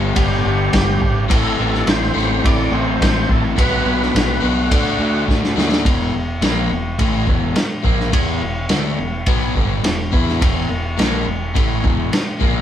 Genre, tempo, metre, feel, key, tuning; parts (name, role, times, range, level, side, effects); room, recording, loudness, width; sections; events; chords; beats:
classic rock; 105 BPM; 4/4; straight; E minor; A4 = 440 Hz
crunchy overdriven guitar; riff; 0.0-12.6 s; E2 to A4; -22 LUFS; left 8 dB
crunchy overdriven guitar; riff; 0.0-12.6 s; E2 to A4; -26 LUFS; right 6 dB
crunchy overdriven guitar; riff; 0.0-5.8 s; G2 to D4; -26 LUFS; right 1 dB
growling fingered electric bass; bass; 0.0-12.6 s; E1 to E2; -22 LUFS; equal; overdrive
overdriven tonewheel organ; melody; 0.2-5.3 s; F#4 to D5; -23 LUFS; equal; chorus vibrato, slow rotary speaker
vintage drum kit; drums; 0.2-12.5 s; kick drum, ride cymbal, snare drum; -18 LUFS; equal
moderate stone room reverb, RT60 0.9 s; band playing live in one room; -15 LUFS; side -10 dB against mid
0.0-5.9 A section; 5.9-12.6 B section
drum fill 5.3-5.9
0.0 G; 1.3 Am; 3.6 Bm; 4.7 D; 5.9 Em
0.16 0.73 | 1.30 1.87 2.44 3.01 | 3.58 4.14 4.71 5.28 | 5.85 6.42 6.99 7.56 | 8.13 8.70 9.27 9.84 | 10.41 10.98 11.55 12.12